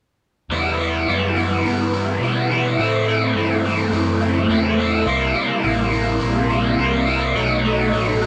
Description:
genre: rock.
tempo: 105 BPM.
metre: 4/4.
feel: straight.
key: E minor.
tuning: A4 = 440 Hz.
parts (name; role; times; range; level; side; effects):
overdriven electric guitar; riff; 0.5-8.3 s; A2 to E4; -20 LUFS; equal; phaser.
overdriven picked electric bass; bass; 0.5-8.3 s; A1 to B2; -26 LUFS; equal; none.
room: moderate studio ambience, RT60 0.5 s.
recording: band playing live in one room.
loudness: -19 LUFS.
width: mono.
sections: 0.5-8.3 A section.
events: none.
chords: 0.5 Em; 2.8 Am7; 5.1 C7; 7.4 B7.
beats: | 0.50 1.07 1.64 2.21 | 2.78 3.35 3.92 4.50 | 5.07 5.64 6.21 6.78 | 7.35 7.92.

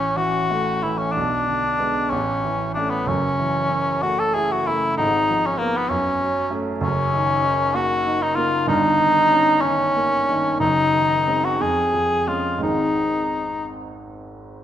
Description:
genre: classical, romantic duo for cor anglais and grand piano.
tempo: 54-67 BPM (dotted quarters).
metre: 6/8.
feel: rubato.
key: unclear.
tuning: A4 = 440 Hz.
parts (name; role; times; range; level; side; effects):
mellow cor anglais; melody; 0.0-13.7 s; Bb3 to A4; -19 LUFS; left 1 dB; none.
warm grand piano; accompaniment; 0.0-14.6 s; F#1 to E4; -24 LUFS; right 2 dB; none.
room: moderate recital hall reverb, RT60 1.4 s.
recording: none.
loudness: -18 LUFS.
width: side -10 dB against mid.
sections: 0.0-14.6 A section.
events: none.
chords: 0.0 A; 1.2 G#dim/B; 2.1 A; 3.1 F#m7; 5.0 Fdim/Ab; 5.9 F#m; 6.8 Ebm7/Gb; 8.7 Eb7/G; 10.6 Ab7/Gb; 11.6 Db/F; 12.6 Ab.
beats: 0.19 | 1.16 2.12 | 3.08 4.03 | 5.00 5.91 | 6.83 7.75 | 8.68 9.62 | 10.60 11.59 | 12.62 13.67.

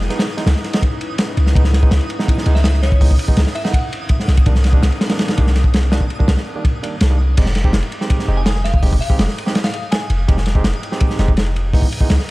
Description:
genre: drum and bass, jungle.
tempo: 165 BPM.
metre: 4/4.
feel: straight.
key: unclear.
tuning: A4 = 440 Hz.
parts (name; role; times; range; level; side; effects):
airy breathy pad; sustained chords; 0.0-7.3 s; C4 to Cb5; -30 LUFS; left 2 dB; chorus.
warm 808-style bass; bass; 0.0-12.2 s; F1 to Db2; -15 LUFS; equal; none.
crunchy breakbeat drum kit; drums; 0.0-12.3 s; crash cymbal, hi-hat, kick drum, ride cymbal, snare drum; -16 LUFS; equal; none.
twinkling granular texture; texture; 0.0-12.3 s; Eb6; -34 LUFS; equal; built-in reverb.
barky tine electric piano; stabs; 0.1-12.1 s; Eb3 to G4; -26 LUFS; right 3 dB; dub echo.
glassy synth bell; melody; 2.6-3.8, 8.4-10.4 s; Db5 to Ab5; -30 LUFS; equal; chorus, tremolo, dub echo.
room: small room ambience.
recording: dark, warm production.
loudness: -14 LUFS.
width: side -20 dB against mid.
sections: 0.0-7.4 A section; 7.4-12.3 A section.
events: drop 0.0-7.4, 7.4-12.3.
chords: 0.1 Dbm9; 3.7 Cm9; 7.4 Fm9; 11.7 Dbm9.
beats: | 0.10 0.46 0.83 1.19 | 1.55 1.92 2.28 2.65 | 3.01 3.37 3.74 4.10 | 4.46 4.83 5.19 5.55 | 5.92 6.28 6.65 7.01 | 7.37 7.74 8.10 8.46 | 8.83 9.19 9.55 9.92 | 10.28 10.65 11.01 11.37 | 11.74 12.10.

